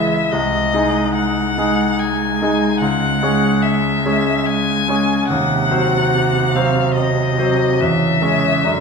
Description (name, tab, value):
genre	classical, slow romantic movement for piano trio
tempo	72 BPM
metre	3/4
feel	rubato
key	C# minor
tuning	A4 = 441 Hz
part	rich violin	melody	0.0-8.8 s	D#5 to G#5	-19 LUFS	left 5 dB	none
part	warm cello	second line	0.0-8.8 s	C3 to G#3	-20 LUFS	right 4 dB	none
part	bright concert grand piano	accompaniment	0.0-8.8 s	B#1 to C5	-18 LUFS	equal	none
room	wet recital hall reverb, RT60 1.8 s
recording	minimal, uncompressed stereo recording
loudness	-14 LUFS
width	side -5 dB against mid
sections	0.0-8.8 A section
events	none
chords	0.3 G#/B#; 2.8 C#m; 5.3 Cdim/Eb; 7.8 C#m/E